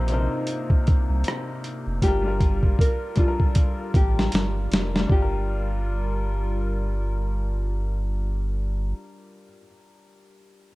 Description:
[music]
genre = lo-fi hip hop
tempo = 78 BPM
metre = 4/4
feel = swing 58% on 16ths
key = G minor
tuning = A4 = 438 Hz
[part]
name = nylon-string guitar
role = melody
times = 0.0-7.4 s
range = F4 to C5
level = -30 LUFS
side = equal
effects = low-pass filter
[part]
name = bright upright piano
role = accompaniment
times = 0.0-10.7 s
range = C3 to Bb4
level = -32 LUFS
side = left 3 dB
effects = cassette tape, low-pass filter
[part]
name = hollow soft pad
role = sustained chords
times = 0.0-8.9 s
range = C3 to Bb4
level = -36 LUFS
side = right 2 dB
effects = chorus, low-pass filter
[part]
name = warm sub bass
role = bass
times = 0.0-8.9 s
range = F1 to C2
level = -25 LUFS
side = equal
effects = none
[part]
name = boom bap sampler-style drum kit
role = drums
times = 0.1-5.3 s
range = hi-hat, kick drum, rim click, snare drum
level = -20 LUFS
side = equal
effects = none
[sound]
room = little or no reverb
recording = dark, warm production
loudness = -21 LUFS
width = side -20 dB against mid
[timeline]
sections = 0.0-5.1 A section; 5.1-8.2 B section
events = drum fill 2.0-5.1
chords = 0.0 Cm7; 2.0 Gm7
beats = 0.48 1.25 | 2.02 2.79 3.56 4.33 | 5.10 5.87 6.63 7.40

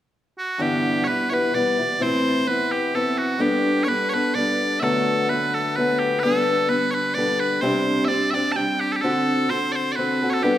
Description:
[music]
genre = celtic folk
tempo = 128 BPM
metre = 3/4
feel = swing 54% on 8ths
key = G major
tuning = A4 = 440 Hz
[part]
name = loud bright bagpipes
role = melody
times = 0.4-10.6 s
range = F#4 to A5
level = -23 LUFS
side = right 2 dB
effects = none
[part]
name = fingerpicked acoustic archtop guitar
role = accompaniment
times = 0.6-10.6 s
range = G2 to A4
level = -21 LUFS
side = left 1 dB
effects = none
[sound]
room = wet recital hall reverb, RT60 1.8 s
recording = none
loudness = -19 LUFS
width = side -12 dB against mid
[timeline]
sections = 0.6-10.6 A section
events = none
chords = 0.0 N.C.; 0.6 G6; 2.0 Amadd9; 3.4 Gadd9; 4.8 D6; 6.2 Gadd9; 7.6 Csus2; 9.0 D7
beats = 0.12 | 0.59 1.06 1.53 | 2.00 2.47 2.94 | 3.40 3.87 4.34 | 4.81 5.28 5.75 | 6.22 6.68 7.15 | 7.62 8.09 8.56 | 9.03 9.50 9.96 | 10.43

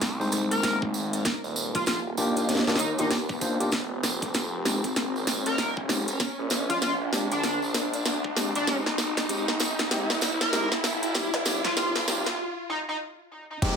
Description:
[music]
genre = glitch hop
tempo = 97 BPM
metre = 4/4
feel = swing 61% on 16ths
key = unclear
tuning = A4 = 438 Hz
[part]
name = phased detuned saw bass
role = bass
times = 0.0-13.8 s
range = Eb1 to Eb2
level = -33 LUFS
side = equal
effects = phaser, overdrive, high-pass filter
[part]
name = drum and bass drum kit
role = drums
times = 0.0-13.8 s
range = crash cymbal, hi-hat, rim click, snare drum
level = -28 LUFS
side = equal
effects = none
[part]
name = tambourine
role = percussion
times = 0.0-13.8 s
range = none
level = -35 LUFS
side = right 4 dB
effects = none
[part]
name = riser and downlifter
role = sound effects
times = 0.0-13.8 s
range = none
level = -32 LUFS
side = equal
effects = none
[part]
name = overdriven tine electric piano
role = stabs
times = 0.2-13.8 s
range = G3 to C5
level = -30 LUFS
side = left 1 dB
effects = sidechain pumping, low-pass filter, digital delay
[part]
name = sync lead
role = melody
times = 0.5-13.0 s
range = D4 to Bb4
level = -30 LUFS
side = equal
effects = lush chorus, digital delay
[part]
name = electronic kick drum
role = drums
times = 0.8-13.8 s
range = none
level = -33 LUFS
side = equal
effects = high-pass filter on kick, high-pass filter on room
[sound]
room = wet studio reverb, RT60 0.6 s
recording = high-pass filter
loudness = -24 LUFS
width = side -6 dB against mid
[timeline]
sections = 0.0-13.6 A section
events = build-up 0.0-13.6; drum fill 0.0-12.4; riser 0.0-12.4; break 12.4-13.6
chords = 0.0 Ab; 1.3 Ebmaj7; 3.7 Fm7; 6.2 Bb7; 8.7 Ab; 11.1 Eb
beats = 0.01 0.63 | 1.25 1.87 2.49 3.11 | 3.73 4.34 4.96 5.58 | 6.20 6.82 7.44 8.06 | 8.67 9.29 9.91 10.53 | 11.15 11.77 12.39 13.00 | 13.62

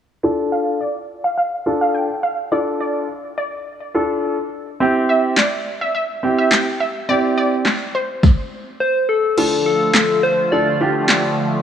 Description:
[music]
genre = dance-pop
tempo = 105 BPM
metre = 4/4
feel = straight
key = D minor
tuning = A4 = 436 Hz
[part]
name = warm grand piano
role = accompaniment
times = 0.2-11.2 s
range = C4 to A4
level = -19 LUFS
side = right 1 dB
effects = sidechain pumping, low-pass filter
[part]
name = analog pluck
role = melody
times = 0.5-8.5 s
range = C5 to G5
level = -21 LUFS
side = right 1 dB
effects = chorus, low-pass filter, tape echo
[part]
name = deep house drum kit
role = drums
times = 5.4-11.2 s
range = crash cymbal, handclaps, kick drum, snare drum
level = -17 LUFS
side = equal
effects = overdrive
[part]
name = soft struck synth lead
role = melody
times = 8.8-11.4 s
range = A4 to D5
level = -18 LUFS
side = left 2 dB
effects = chorus, tape echo
[part]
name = filtered supersaw swell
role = sustained chords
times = 9.4-11.6 s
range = D3 to F4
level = -22 LUFS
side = equal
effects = sidechain pumping
[sound]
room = moderate lush hall reverb, RT60 2.4 s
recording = worn, warbling old tape, cassette tape, warbly pitch drift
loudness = -16 LUFS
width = side -9 dB against mid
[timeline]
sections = 0.2-9.4 A section; 9.4-11.6 B section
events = filter sweep 0.2-9.4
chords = 0.2 Dm; 4.8 C; 9.4 Dm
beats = | 0.23 0.81 1.38 1.95 | 2.52 3.09 3.66 4.23 | 4.80 5.38 5.95 6.52 | 7.09 7.66 8.23 8.80 | 9.38 9.95 10.52 11.09

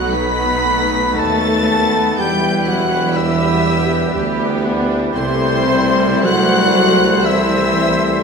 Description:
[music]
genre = classical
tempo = 53-63 BPM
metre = 3/4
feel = rubato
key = E minor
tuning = A4 = 441 Hz
[part]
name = rich symphonic violin section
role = melody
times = 0.0-8.2 s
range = C6 to B6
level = -24 LUFS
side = left 3 dB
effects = none
[part]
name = clear oboe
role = second line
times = 0.0-8.2 s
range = C5 to B5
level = -23 LUFS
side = right 2 dB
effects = none
[part]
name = mellow clarinet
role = second line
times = 0.0-8.2 s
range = C4 to B4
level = -23 LUFS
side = left 2 dB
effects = none
[part]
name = mellow small flute group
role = second line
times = 0.0-8.2 s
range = C5 to B5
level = -23 LUFS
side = left 4 dB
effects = none
[part]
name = rich symphonic violin section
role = second line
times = 0.0-8.2 s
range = C5 to B5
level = -26 LUFS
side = left 3 dB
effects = none
[part]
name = clear symphonic viola section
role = accompaniment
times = 0.0-8.2 s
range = G3 to G4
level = -23 LUFS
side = equal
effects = none
[part]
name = clear trombone section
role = sustained chords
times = 0.0-8.2 s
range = B2 to G3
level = -25 LUFS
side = right 3 dB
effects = none
[part]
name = mellow French horn section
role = sustained chords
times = 0.0-8.2 s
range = A3 to E4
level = -24 LUFS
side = left 6 dB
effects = none
[part]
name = dark trumpet section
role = stabs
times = 0.0-8.2 s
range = B4 to C5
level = -24 LUFS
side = right 2 dB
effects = none
[part]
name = dark symphonic cello section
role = bass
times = 0.0-8.2 s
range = C3 to B3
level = -22 LUFS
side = equal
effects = none
[part]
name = rich symphonic double bass section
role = bass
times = 0.0-8.2 s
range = B1 to E2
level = -23 LUFS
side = right 4 dB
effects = none
[part]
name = warm tuba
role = bass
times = 0.0-8.2 s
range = E1 to D#2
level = -24 LUFS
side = right 4 dB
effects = none
[sound]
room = wet scoring stage reverb, RT60 1.8 s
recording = none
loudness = -13 LUFS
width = side -5 dB against mid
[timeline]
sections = 0.0-8.2 A section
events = none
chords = 0.0 B; 2.2 Em; 5.2 Am7/C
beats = 0.14 1.18 | 2.19 3.16 4.14 | 5.16 6.25 7.26

